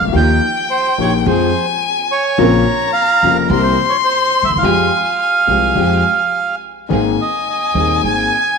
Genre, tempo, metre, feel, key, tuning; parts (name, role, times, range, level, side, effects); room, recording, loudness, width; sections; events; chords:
tango; 107 BPM; 4/4; rubato; F minor; A4 = 440 Hz
bandoneon; melody; 0.0-8.6 s; Bb4 to Ab5; -16 LUFS; right 5 dB
rich violin; second line; 0.0-8.6 s; F5 to C6; -19 LUFS; left 7 dB
warm concert grand piano; accompaniment; 0.0-8.3 s; Eb1 to Ab4; -18 LUFS; left 9 dB
upright bass; bass; 0.0-8.3 s; F1 to F2; -19 LUFS; right 4 dB
dark studio string section; stabs; 0.2-8.3 s; Ab3 to Bb4; -23 LUFS; right 12 dB
moderate echo chamber reverb, RT60 2.2 s; 1960s-style stereo with parts hard left and right, faint mains hum; -12 LUFS; side -5 dB against mid
0.0-6.9 A section; 6.9-8.6 B section
0.2 Ebadd9; 1.3 Fm; 2.4 Bbmadd9; 3.5 C7; 4.6 Fmadd9; 6.9 Abadd9